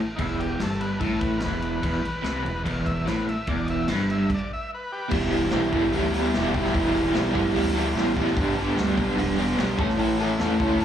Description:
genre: garage rock duo or trio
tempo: 147 BPM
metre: 4/4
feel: straight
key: E minor, E dorian from 5.1 s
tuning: A4 = 440 Hz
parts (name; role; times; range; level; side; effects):
- fuzz fingered electric bass; bass; 0.0-10.8 s; E1 to E2; -30 LUFS; equal; overdrive
- overdriven combo organ; melody; 0.2-5.1 s; D#4 to E5; -33 LUFS; left 1 dB; none
- crunchy overdriven guitar; riff; 0.2-10.8 s; E2 to A4; -23 LUFS; equal; tremolo, slapback echo
- vintage drum kit; drums; 0.2-10.8 s; crash cymbal, hi-hat, kick drum, snare drum; -31 LUFS; equal; none
room: studio reverb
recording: live gig heard through the venue's PA, club reverb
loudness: -22 LUFS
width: side -9 dB against mid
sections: 0.0-5.1 A section; 5.1-10.8 B section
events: transistor combo organ solo 0.0-5.1; stop 4.3-5.1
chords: 0.0 Em; 8.4 G; 9.8 A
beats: | 0.21 0.62 1.02 1.43 | 1.84 2.25 2.66 3.07 | 3.48 3.88 4.29 4.70 | 5.11 5.51 5.92 6.33 | 6.73 7.14 7.55 7.95 | 8.36 8.77 9.17 9.58 | 9.99 10.39 10.80

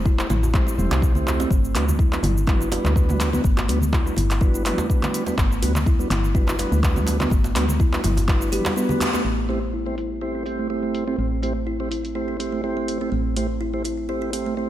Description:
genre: afro house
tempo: 124 BPM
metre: 4/4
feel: swing 54% on 16ths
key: A dorian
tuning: A4 = 440 Hz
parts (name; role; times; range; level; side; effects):
- woody FM bass; bass; 0.0-14.7 s; E1 to D2; -24 LUFS; equal; sidechain pumping
- kalimba; arpeggios; 0.1-14.6 s; G3 to G4; -27 LUFS; right 1 dB; sidechain pumping, low-pass filter, ping-pong delay
- deep house drum kit; drums; 0.1-14.4 s; handclaps, hi-hat, shaker, toms; -28 LUFS; equal; overdrive, low-pass filter on perc, low-pass filter on snare, low-pass filter on toms, low-pass filter on hats
- electronic kick drum; drums; 0.1-8.4 s; none; -20 LUFS; equal; none
- djembe; percussion; 0.1-9.2 s; none; -33 LUFS; right 3 dB; none
- mellow tonewheel organ; stabs; 0.2-14.7 s; G3 to C5; -28 LUFS; right 1 dB; slow rotary speaker, sidechain pumping, ping-pong delay
- congas; percussion; 0.2-9.2 s; none; -31 LUFS; equal; none
room: light reverb, digital ambience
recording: none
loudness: -19 LUFS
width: side -13 dB against mid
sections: 0.0-9.3 A section; 9.3-14.7 B section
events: band accent 9.0; filter sweep on drum 9.3-14.7; filter sweep on kalimba 9.3-14.7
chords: 0.0 Am7; 1.5 Gmaj7; 9.3 Am7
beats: 0.06 0.54 1.03 | 1.51 1.99 2.48 2.96 | 3.44 3.93 4.41 4.90 | 5.38 5.87 6.35 6.83 | 7.32 7.80 8.28 8.77 | 9.25 9.74 10.22 10.70 | 11.19 11.67 12.15 12.64 | 13.12 13.61 14.09 14.57

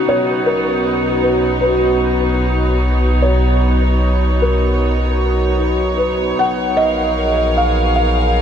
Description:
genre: ambient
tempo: 76 BPM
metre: 4/4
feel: straight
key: B lydian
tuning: A4 = 445 Hz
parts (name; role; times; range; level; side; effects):
- felt-muted upright piano; melody; 0.0-8.4 s; A#4 to F#5; -19 LUFS; equal; shimmer reverb, diffuse ambient delay
- rich chamber string section; sustained chords; 0.0-8.4 s; B2 to E#5; -18 LUFS; equal; shimmer reverb
- warm sub bass; bass; 0.0-8.4 s; A#1 to B1; -18 LUFS; equal; none
- muted felt-like synth keys; arpeggios; 0.1-8.4 s; C#4 to D#4; -34 LUFS; equal; none
- pedal harmonium; drone; 0.1-8.4 s; F#3 to B3; -24 LUFS; equal; none
room: wet huge ambient reverb, RT60 7.3 s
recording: dark, warm production, nothing above 10.8 kHz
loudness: -13 LUFS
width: side -8 dB against mid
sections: 0.1-8.4 A section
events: none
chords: 0.1 Badd9; 6.4 F#maj7/A#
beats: | 0.06 0.85 1.64 2.43 | 3.22 4.01 4.80 5.59 | 6.38 7.17 7.96

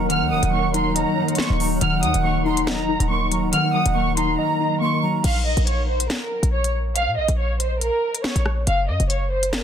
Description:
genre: hip hop, drill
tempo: 140 BPM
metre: 4/4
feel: half-time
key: Bb minor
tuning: A4 = 439 Hz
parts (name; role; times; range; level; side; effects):
- breathy jazz flute; second line; 0.0-5.2 s; Gb5 to C6; -27 LUFS; right 7 dB; ping-pong delay
- muted felt-like synth keys; accompaniment; 0.0-5.3 s; Eb3 to Eb5; -23 LUFS; left 3 dB; chorus, phaser, low-pass filter
- granular cloud pad; sustained chords; 0.0-5.2 s; Gb3 to Gb5; -28 LUFS; left 1 dB; built-in reverb
- short 808-style bass; bass; 0.0-9.6 s; Db1 to Bb2; -23 LUFS; equal; none
- dark studio violin section; melody; 0.1-9.6 s; Bb4 to F6; -24 LUFS; right 1 dB; low-pass filter, ping-pong delay
- drill drum kit; drums; 0.1-9.6 s; crash cymbal, hi-hat, rim click, snare drum; -26 LUFS; left 1 dB; none
room: digital ambience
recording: dense, heavily limited modern master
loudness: -18 LUFS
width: side -8 dB against mid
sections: 0.0-5.2 A section; 5.2-9.6 B section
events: silent gap 4.4-5.2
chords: 0.0 Ebm; 5.2 Bbm; 8.7 N.C.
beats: | 0.10 0.53 0.96 1.39 | 1.81 2.24 2.67 3.10 | 3.53 3.96 4.38 4.81 | 5.24 5.67 6.10 6.53 | 6.96 7.38 7.81 8.24 | 8.67 9.10 9.53

